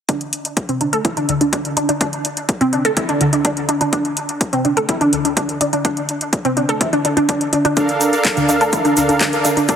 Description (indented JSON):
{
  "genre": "progressive house",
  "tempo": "125 BPM",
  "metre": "4/4",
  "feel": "straight",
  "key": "D minor",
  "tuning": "A4 = 440 Hz",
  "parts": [
    { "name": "wide unison pluck", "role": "arpeggios", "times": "0.1-9.8 s", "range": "D3 to A4", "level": "-17 LUFS", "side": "equal", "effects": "ensemble chorus, sidechain pumping, dub echo" },
    { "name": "electronic kick drum", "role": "drums", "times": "0.1-9.8 s", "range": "none", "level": "-22 LUFS", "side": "equal", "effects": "overdrive, high-pass filter on kick, high-pass filter on room" },
    { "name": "house drum kit", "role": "drums", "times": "0.1-9.8 s", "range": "handclaps, hi-hat", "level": "-21 LUFS", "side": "equal", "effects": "overdrive" },
    { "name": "soft supersaw", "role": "stabs", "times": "7.8-9.8 s", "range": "D4 to F5", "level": "-17 LUFS", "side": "right 2 dB", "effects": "sidechain pumping, dub echo" },
    { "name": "tube shaker", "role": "percussion", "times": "7.8-9.8 s", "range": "none", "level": "-27 LUFS", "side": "right 2 dB", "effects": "none" }
  ],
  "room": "moderate lush hall reverb, RT60 2.0 s",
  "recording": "heavily compressed radio sound, multiband compression",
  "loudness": "-15 LUFS",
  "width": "side -8 dB against mid",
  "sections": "0.1-9.8 A section",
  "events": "none",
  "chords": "0.1 D5; 7.8 Bbmaj7",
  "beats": "| 0.09 0.57 1.05 1.53 | 2.01 2.49 2.97 3.45 | 3.93 4.41 4.89 5.37 | 5.85 6.33 6.81 7.29 | 7.77 8.25 8.73 9.21 | 9.69"
}